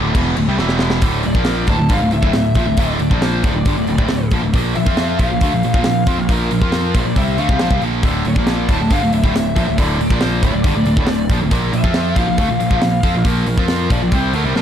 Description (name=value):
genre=heavy metal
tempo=137 BPM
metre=4/4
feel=straight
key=D minor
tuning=A4 = 441 Hz
part: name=bluesy overdriven lead guitar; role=melody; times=0.0-14.6 s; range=Bb4 to D6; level=-23 LUFS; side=left 3 dB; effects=distortion
part: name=high-gain distorted guitar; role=riff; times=0.0-14.6 s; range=D2 to F4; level=-18 LUFS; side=right 1 dB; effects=distortion
part: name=fuzz picked electric bass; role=bass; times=0.0-14.6 s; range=D1 to F2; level=-20 LUFS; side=equal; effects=overdrive
part: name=tight metal drum kit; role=drums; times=0.1-14.6 s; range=crash cymbal, hi-hat, kick drum, snare drum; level=-18 LUFS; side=equal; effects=none
room=studio reverb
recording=dark, warm production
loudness=-14 LUFS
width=side -9 dB against mid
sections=0.0-1.0 A section; 1.0-14.6 B section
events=drum fill 0.6-1.0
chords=0.0 D5; 0.6 E5; 1.0 Dm; 4.5 Bb5; 8.0 Dm; 11.5 Bb5